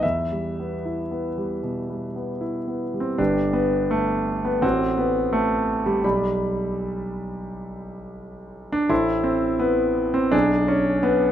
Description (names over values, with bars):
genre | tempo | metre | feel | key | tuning
classical, romantic character piece for solo piano | 71-87 BPM | 4/4 | rubato | E minor, G major from 3.2 s | A4 = 442 Hz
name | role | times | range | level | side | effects
clear concert grand piano | solo | 0.0-11.3 s | G1 to C6 | -21 LUFS | equal | none
room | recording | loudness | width
light reverb | close, detailed microphones | -21 LUFS | side -10 dB against mid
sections
0.0-3.2 A section; 3.2-11.3 B section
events
none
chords
0.0 Em; 3.2 G; 4.6 F#dim/A; 6.0 G/B; 8.9 Am; 10.3 G#dim/B